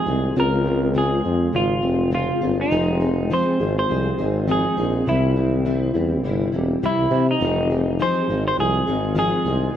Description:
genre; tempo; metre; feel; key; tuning
indie pop; 102 BPM; 4/4; swing 55% on 16ths; F minor; A4 = 440 Hz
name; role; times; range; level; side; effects
semi-hollow electric guitar; melody; 0.0-9.8 s; Eb4 to C5; -23 LUFS; right 1 dB; wide subtle chorus
fingerpicked plugged-in steel-string acoustic guitar; accompaniment; 0.0-9.8 s; C3 to Ab4; -23 LUFS; left 2 dB; ensemble chorus, warbly pitch drift
shimmering ambient pad; sustained chords; 0.0-9.8 s; Db3 to G4; -30 LUFS; right 1 dB; chorus, built-in reverb
clear tuba; bass; 0.1-9.7 s; E1 to C3; -22 LUFS; equal; none
room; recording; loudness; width
moderate studio reverb, RT60 0.6 s; dark, warm production; -18 LUFS; side -10 dB against mid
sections
0.0-7.4 A section; 7.4-9.8 A section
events
none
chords
0.4 Dbmaj7; 2.7 Fm7; 5.1 C; 7.4 Fm7

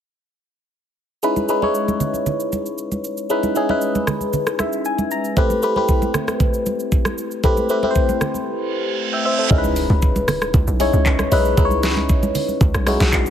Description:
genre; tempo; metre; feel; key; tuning
amapiano; 116 BPM; 4/4; straight; unclear; A4 = 441 Hz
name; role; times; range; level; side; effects
barking FM electric piano; accompaniment; 1.2-13.3 s; G#3 to A#5; -19 LUFS; left 1 dB; phaser
smooth R&B drum kit; drums; 1.2-13.3 s; handclaps, hi-hat, kick drum, rim click, shaker, snare drum; -20 LUFS; equal; none
congas; percussion; 1.4-13.3 s; none; -26 LUFS; right 3 dB; none
reverse cymbal and impact; sound effects; 8.7-11.6 s; none; -26 LUFS; right 4 dB; none
hollow log drum bass; bass; 9.5-13.3 s; B1 to C#2; -19 LUFS; equal; none
room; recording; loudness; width
light reverb; heavily compressed radio sound, multiband compression; -16 LUFS; side -9 dB against mid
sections
1.2-9.5 A section; 9.5-13.3 B section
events
FM electric piano fill 4.3-5.4; break 8.5-9.5; reverse cymbal 8.7-9.5; drop 9.5-13.3; impact 9.5-11.6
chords
1.2 C#m9; 5.4 Am9; 9.5 C#m9

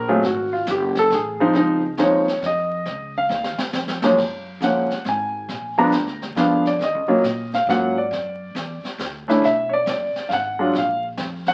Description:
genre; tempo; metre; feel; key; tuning
jazz piano trio; 137 BPM; 3/4; swing 66% on 8ths; Db major, F# major from 4.2 s; A4 = 439 Hz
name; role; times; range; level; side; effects
warm concert grand piano; melody; 0.0-11.5 s; Gb2 to A#5; -21 LUFS; equal; none
upright bass; bass; 0.0-11.5 s; Gb1 to A#2; -35 LUFS; equal; none
vintage brush drum kit; drums; 0.2-11.5 s; brushed snare drum, crash cymbal, hi-hat, kick drum, snare drum; -32 LUFS; equal; none
room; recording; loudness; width
moderate club reverb, RT60 0.6 s; very old 78 rpm record, vinyl crackle; -21 LUFS; mono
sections
0.0-4.2 A section; 4.2-11.5 A section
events
grand piano solo 0.0-11.5; drum fill 3.3-4.2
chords
0.2 Ab7(no3); 1.5 Dbmaj7; 4.2 F#sus2; 5.5 A#7b9; 6.8 D#m7; 8.1 F#7(no3); 9.4 Bm; 10.7 A#5

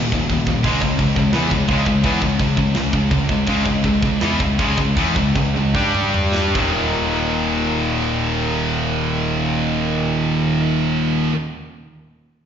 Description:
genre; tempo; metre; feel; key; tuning
heavy metal; 73-86 BPM; 4/4; straight; Eb phrygian dominant; A4 = 440 Hz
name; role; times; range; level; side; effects
chamber organ, stopped flute; sustained chords; 0.0-10.6 s; Db3 to G5; -31 LUFS; right 3 dB; none
heavy high-gain guitar; riff; 0.0-11.4 s; Eb2 to G4; -24 LUFS; right 15 dB; distortion, slapback echo
high-gain distorted guitar; riff; 0.0-11.4 s; Eb2 to G4; -21 LUFS; left 7 dB; distortion
raw garage guitar; riff; 0.0-11.3 s; Eb2 to G4; -23 LUFS; right 3 dB; overdrive, slapback echo
fuzz picked electric bass; bass; 0.0-11.3 s; Eb1 to G2; -24 LUFS; right 1 dB; overdrive
tight metal drum kit; drums; 0.1-6.7 s; china cymbal, crash cymbal, kick drum, snare drum, toms; -23 LUFS; equal; none
room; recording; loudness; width
little or no reverb; live gig heard through the venue's PA, recital hall reverb, nothing above 7.5 kHz; -16 LUFS; side -8 dB against mid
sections
0.0-6.6 A section; 6.6-9.8 B section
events
slowing down 0.6-6.6; drum fill 5.8-6.6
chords
0.0 Eb; 0.6 Db5; 5.8 G5; 6.6 Eb

